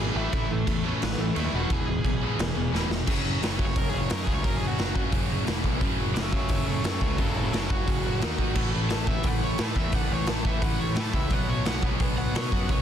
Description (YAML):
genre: punk rock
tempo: 175 BPM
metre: 4/4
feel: straight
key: unclear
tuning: A4 = 439 Hz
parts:
  - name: cranked stack guitar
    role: melody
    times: 0.0-12.8 s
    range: A3 to A5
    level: -34 LUFS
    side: equal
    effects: overdrive, tape echo
  - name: distorted electric guitar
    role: riff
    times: 0.0-12.8 s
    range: E2 to D#4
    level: -35 LUFS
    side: equal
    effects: distortion
  - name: tight distorted guitar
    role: riff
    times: 0.0-12.8 s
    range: E2 to D#4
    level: -34 LUFS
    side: left 13 dB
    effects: distortion
  - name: tight distorted guitar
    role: riff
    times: 0.0-12.8 s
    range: E2 to D#4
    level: -34 LUFS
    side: right 14 dB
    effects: distortion
  - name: growling picked electric bass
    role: bass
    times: 0.0-12.8 s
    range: E1 to B2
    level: -31 LUFS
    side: equal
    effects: overdrive
  - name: raw garage drum kit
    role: drums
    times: 0.3-12.8 s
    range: crash cymbal, hi-hat, kick drum, snare drum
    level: -27 LUFS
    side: equal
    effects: none
room: little or no reverb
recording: dense, heavily limited modern master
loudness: -24 LUFS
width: side -9 dB against mid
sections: 0.0-3.1 A section; 3.1-12.8 B section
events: half time 0.0-3.1; drum fill 2.7-3.1; overdriven electric guitar solo 3.1-12.8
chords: 0.2 A; 1.5 E; 3.1 F#5; 5.5 E5; 5.8 F#5; 8.2 D#5; 8.6 A5; 11.3 B5